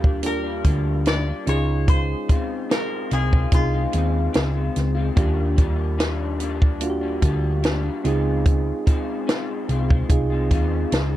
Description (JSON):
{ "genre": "indie pop, bedroom pop", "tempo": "73 BPM", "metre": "4/4", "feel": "straight", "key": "unclear", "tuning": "A4 = 435 Hz", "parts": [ { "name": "koto", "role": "melody", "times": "0.0-5.7 s", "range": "F4 to D5", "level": "-29 LUFS", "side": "left 1 dB", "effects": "lush chorus, slapback echo" }, { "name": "electric guitar through a small old amp", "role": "accompaniment", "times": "0.0-11.2 s", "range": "Db3 to F4", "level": "-29 LUFS", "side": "left 8 dB", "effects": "analog chorus, warbly pitch drift" }, { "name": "soft electric-piano-like synth keys", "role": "accompaniment", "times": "0.0-11.2 s", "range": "Bb3 to Ab4", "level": "-28 LUFS", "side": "right 4 dB", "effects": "chorus, cassette tape" }, { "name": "hollow-body short-scale picked electric bass", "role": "bass", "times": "0.0-11.2 s", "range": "C2 to Eb2", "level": "-23 LUFS", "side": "equal", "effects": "none" }, { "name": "compact cocktail drum kit", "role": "drums", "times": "0.0-11.1 s", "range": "hi-hat, kick drum, snare drum", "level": "-19 LUFS", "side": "equal", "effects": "none" } ], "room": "light reverb", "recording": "dark, warm production", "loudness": "-19 LUFS", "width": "side -14 dB against mid", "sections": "0.0-11.2 A section", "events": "none", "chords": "0.0 Ebmaj7; 1.5 Dbmaj7; 5.2 Ebmaj7; 8.0 Dbmaj7", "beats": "0.24 1.06 | 1.88 2.71 3.53 4.35 | 5.17 5.99 6.82 7.64 | 8.46 9.28 10.10 10.92" }